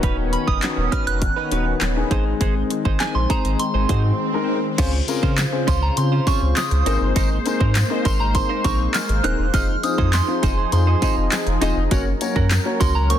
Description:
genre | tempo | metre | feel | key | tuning
dance-pop | 101 BPM | 4/4 | straight | Db major | A4 = 440 Hz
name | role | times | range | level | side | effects
dark baby grand piano | accompaniment | 0.0-13.2 s | Ab3 to Eb5 | -26 LUFS | left 6 dB | sidechain pumping
sweeping resonant pad | sustained chords | 0.0-13.2 s | Db3 to C5 | -27 LUFS | left 1 dB | chorus, sidechain pumping
direct-recorded clean electric guitar | riff | 0.0-13.1 s | Db4 to C5 | -29 LUFS | right 10 dB | analog chorus
warm sub bass | bass | 0.0-13.1 s | Eb1 to Db3 | -20 LUFS | equal | sidechain pumping
pop drum kit | drums | 0.0-13.2 s | crash cymbal, handclaps, hi-hat, kick drum, snare drum | -22 LUFS | equal | none
swell | sound effects | 3.6-4.8 s | none | -31 LUFS | right 2 dB | none
soft synth bell | melody | 0.3-13.2 s | Ab5 to Gb6 | -26 LUFS | right 3 dB | chorus, ping-pong delay
tambourine | percussion | 4.8-13.2 s | none | -36 LUFS | left 6 dB | none
room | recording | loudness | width
digital ambience | dense, heavily limited modern master | -17 LUFS | side -10 dB against mid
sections
0.0-4.8 A section; 4.8-13.2 B section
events
swell 3.6-4.8; break 4.2-4.8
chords
0.0 Cbadd9; 2.1 Ab; 4.8 Dbmaj7; 6.9 Abadd9; 9.5 Fm7; 11.9 Gb

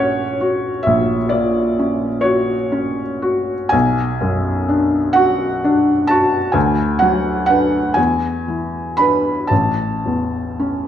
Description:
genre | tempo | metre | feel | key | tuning
classical, romantic nocturne for solo piano | 36-45 BPM (dotted quarters) | 12/8 | rubato | unclear | A4 = 441 Hz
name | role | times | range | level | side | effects
felt-muted upright piano | solo | 0.0-10.9 s | A1 to B5 | -15 LUFS | equal | none
room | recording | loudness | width
wet recital hall reverb, RT60 1.3 s | dark, warm production | -15 LUFS | side -10 dB against mid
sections
0.0-10.9 A section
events
none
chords
0.0 F#7/A#; 3.7 Bm; 6.6 Bm/D; 8.0 E7; 9.5 A

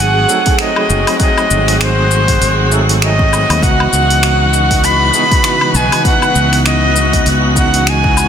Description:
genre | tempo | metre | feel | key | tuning
sunset chillout | 99 BPM | 4/4 | swing 57% on 16ths | C# minor | A4 = 441 Hz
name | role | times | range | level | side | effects
breathy bright jazz flute | melody | 0.0-8.3 s | B#4 to B5 | -14 LUFS | equal | vintage 12-bit sampler grit, ping-pong delay, shimmer reverb
overdriven tine electric piano | accompaniment | 0.0-8.3 s | E3 to A4 | -20 LUFS | moving between left 4 dB and right 4 dB | fast tremolo, auto-pan, ping-pong delay, shimmer reverb
dark chamber string section | sustained chords | 0.0-8.3 s | C#3 to G#4 | -18 LUFS | left 1 dB | shimmer reverb
fretless electric bass | bass | 0.0-8.3 s | F#1 to D#2 | -15 LUFS | equal | none
wind-like tuned noise texture | texture | 0.0-8.3 s | F#6 | -23 LUFS | right 3 dB | built-in reverb, shimmer reverb
deep house drum kit | drums | 0.3-8.3 s | finger snaps, hi-hat, shaker, woodblock | -18 LUFS | left 2 dB | overdrive, soft clipping on snare
electronic kick drum | drums | 0.5-8.1 s | none | -16 LUFS | equal | overdrive
room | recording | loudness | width
moderate plate reverb, RT60 1.9 s | dense, heavily limited modern master | -9 LUFS | side -8 dB against mid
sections
0.0-8.3 A section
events
none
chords
0.0 G#7b9; 3.6 C#m11

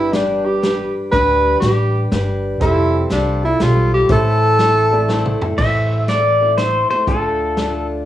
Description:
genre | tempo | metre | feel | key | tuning
honky-tonk and classic country | 121 BPM | 3/4 | swing 66% on 8ths | A minor | A4 = 437 Hz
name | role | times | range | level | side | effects
breathy tenor saxophone | melody | 0.0-5.4 s | D4 to B4 | -16 LUFS | equal | cassette tape
clear upright piano | accompaniment | 0.0-5.6 s | D4 to D5 | -28 LUFS | right 5 dB | none
picked acoustic archtop guitar | accompaniment | 0.0-8.1 s | A2 to B4 | -22 LUFS | left 1 dB | none
upright bass | bass | 0.0-8.1 s | F1 to D2 | -20 LUFS | equal | none
vintage drum kit | drums | 0.1-7.7 s | crash cymbal, hi-hat, kick drum, snare drum, toms | -23 LUFS | equal | none
pedal steel guitar | second line | 5.6-7.9 s | A4 to E5 | -16 LUFS | left 1 dB | none
room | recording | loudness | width
wet studio reverb, RT60 0.6 s | home recording on cassette, small room ambience | -14 LUFS | side -12 dB against mid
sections
0.0-5.6 A section; 5.6-8.1 B section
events
drum fill 5.1-5.6; pedal steel guitar solo 5.6-8.1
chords
0.0 G; 2.6 Fadd9; 4.1 Am; 7.1 Dm

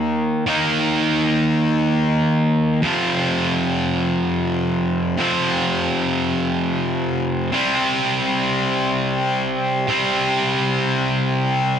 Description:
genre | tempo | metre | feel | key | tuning
rock | 51 BPM (dotted quarters) | 6/8 | straight | unclear | A4 = 440 Hz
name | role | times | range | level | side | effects
sludgy distorted guitar | solo | 0.0-11.8 s | F2 to Eb4 | -17 LUFS | equal | overdrive
room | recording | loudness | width
moderate large studio reverb, RT60 0.9 s, digital ambience | none | -17 LUFS | side -8 dB against mid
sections
0.0-2.8 A section; 2.8-11.8 A section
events
none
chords
0.0 Eb5; 2.8 F5; 7.5 C5

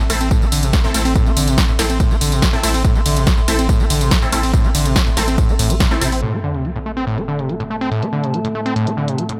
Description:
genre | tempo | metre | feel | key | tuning
driving peak-time techno | 142 BPM | 4/4 | straight | A minor | A4 = 439 Hz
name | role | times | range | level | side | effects
screaming distorted acid line | riff | 0.0-9.3 s | A2 to C4 | -23 LUFS | equal | distortion, chorus, sidechain pumping, dub echo
saturated sub bass | bass | 0.0-6.2 s | A1 | -23 LUFS | equal | overdrive, sidechain pumping, low-pass filter
punchy analog drum machine | drums | 0.0-9.4 s | hi-hat, ride cymbal, snare drum, tambourine | -24 LUFS | equal | low-pass filter on perc, low-pass filter on hats, low-pass filter on snare, low-pass filter on cymbals, low-pass filter on room
warbly tape-like pad | texture | 0.0-9.4 s | C4 to C6 | -30 LUFS | equal | chorus, built-in reverb, sidechain pumping
rave stab | stabs | 0.1-6.1 s | C4 to A4 | -27 LUFS | equal | chorus, built-in reverb, phaser, sidechain pumping, dub echo
electronic kick drum | drums | 0.3-5.9 s | none | -18 LUFS | equal | none
metallic inharmonic drone | drone | 7.4-9.4 s | A2 to A3 | -28 LUFS | equal | chorus, built-in reverb, sidechain pumping
sub drop | sound effects | 6.2-7.9 s | none | -31 LUFS | equal | none
room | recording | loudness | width
light reverb | none | -17 LUFS | mono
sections
0.0-6.2 A section; 6.2-9.4 B section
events
drop 0.0-6.2; band accent 5.8; impact 6.2-7.9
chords
0.0 Am

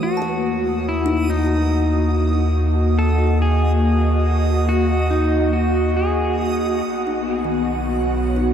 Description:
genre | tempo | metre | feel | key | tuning
ambient | 70 BPM | 4/4 | straight | unclear | A4 = 438 Hz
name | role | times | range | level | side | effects
pedal steel guitar | melody | 0.0-6.8 s | D#4 to A4 | -24 LUFS | left 1 dB | tape echo
airy breathy pad | sustained chords | 0.0-8.5 s | A#3 to F#5 | -21 LUFS | equal | chorus
kalimba | arpeggios | 0.0-8.5 s | D#3 to A5 | -30 LUFS | left 3 dB | tape echo
warm sub bass | bass | 0.0-8.5 s | B1 to D#2 | -20 LUFS | equal | none
backwards swelling texture | texture | 0.0-8.5 s | D#6 to F#6 | -34 LUFS | right 4 dB | built-in reverb
room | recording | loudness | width
wet huge ambient reverb, RT60 7.1 s | dark, warm production | -17 LUFS | side -8 dB against mid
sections
0.0-8.5 A section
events
none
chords
0.0 D#m; 6.9 Badd9

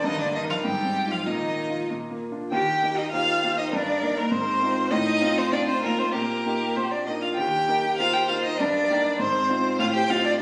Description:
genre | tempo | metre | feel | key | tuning
quick classical-period movement for piano quartet | 99 BPM | 2/4 | straight | Eb major | A4 = 440 Hz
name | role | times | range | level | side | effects
rich violin | melody | 0.0-10.3 s | Bb4 to G5 | -27 LUFS | equal | none
rich violin | second line | 0.0-10.4 s | D4 to C5 | -35 LUFS | equal | none
clear grand piano | accompaniment | 0.0-10.4 s | Eb2 to Bb4 | -30 LUFS | equal | none
rich cello | second line | 0.1-10.4 s | D3 to G4 | -32 LUFS | equal | none
room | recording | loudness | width
moderate recital hall reverb, RT60 1.7 s | recorded on a phone in the room, studio reverb | -24 LUFS | mono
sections
0.0-2.5 A section; 2.5-10.4 B section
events
none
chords
0.0 Eb/G; 0.6 Fm7/Ab; 1.3 Bbsus4; 1.9 Bb; 2.5 Eb; 3.7 Eb/G; 4.3 Fm7/Ab; 4.9 F7/A; 6.1 Eb/Bb; 6.8 Bb; 7.4 Eb; 8.6 Eb/G; 9.2 Fm7/Ab; 9.8 F7/A

